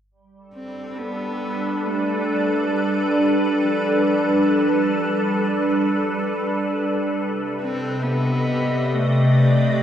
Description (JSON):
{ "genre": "ambient", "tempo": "free time", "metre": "none", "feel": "none", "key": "G mixolydian", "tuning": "A4 = 440 Hz", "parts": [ { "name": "soft additive organ-like pad", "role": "sustained chords", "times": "0.7-9.8 s", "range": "C3 to Eb5", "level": "-19 LUFS", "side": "equal", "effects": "ensemble chorus, built-in reverb" }, { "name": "warm cello", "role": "melody", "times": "0.5-9.8 s", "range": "F3 to C4", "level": "-29 LUFS", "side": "equal", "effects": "analog delay" } ], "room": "wet spring reverb, RT60 2.6 s", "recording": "echo-heavy mix, cassette tape, faint mains hum", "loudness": "-18 LUFS", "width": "side -9 dB against mid", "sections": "0.1-9.8 A section", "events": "fade-in on cello 0.1-9.8", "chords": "0.1 G7; 7.2 Cmadd9" }